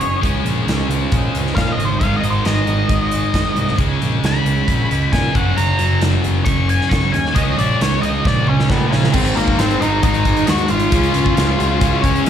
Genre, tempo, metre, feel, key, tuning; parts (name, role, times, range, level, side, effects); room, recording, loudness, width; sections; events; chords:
quiet-loud alternative rock; 135 BPM; 4/4; straight; A4 = 436 Hz
octave-fuzz lead guitar; melody; 0.0-12.3 s; Bb3 to Db6; -20 LUFS; equal; distortion
twangy electric guitar; arpeggios; 0.0-2.0 s; Db3 to Ab4; -30 LUFS; right 2 dB; ensemble chorus, slapback echo, tape echo
high-gain distorted guitar; riff; 0.0-12.3 s; Gb2 to Db4; -22 LUFS; left 12 dB; distortion, slapback echo
thick fuzz guitar; riff; 0.0-9.1 s; Gb2 to Db4; -22 LUFS; right 9 dB; distortion
fuzz picked electric bass; bass; 0.0-12.3 s; Gb1 to Bb2; -20 LUFS; equal; overdrive
big rock drum kit; drums; 0.0-12.3 s; crash cymbal, hi-hat, kick drum, snare drum, toms; -20 LUFS; equal
fuzz guitar; riff; 9.1-12.3 s; Ab2 to Db4; -21 LUFS; left 1 dB; distortion
little or no reverb; live gig heard through the venue's PA, club reverb; -14 LUFS; side -9 dB against mid
0.0-9.1 A section; 9.1-12.3 B section
lead electric guitar solo 0.0-9.1; drum fill 8.2-9.1
0.2 Db; 2.0 Ab5; 3.8 Db5; 5.3 Gb; 7.4 Db5; 9.1 Ab; 10.9 Db